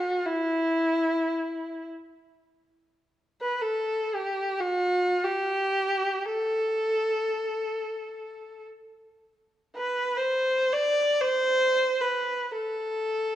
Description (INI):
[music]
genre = Persian modal ensemble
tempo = free time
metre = none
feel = none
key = unclear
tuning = A4 = 440 Hz
[part]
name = clear kamancheh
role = solo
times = 0.0-13.4 s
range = E4 to D5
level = -25 LUFS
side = equal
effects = none
[sound]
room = wet recital hall reverb, RT60 1.8 s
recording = dark, warm production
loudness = -24 LUFS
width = side -12 dB against mid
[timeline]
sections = 0.0-2.8 A section; 2.8-13.4 A section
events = none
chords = none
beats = free time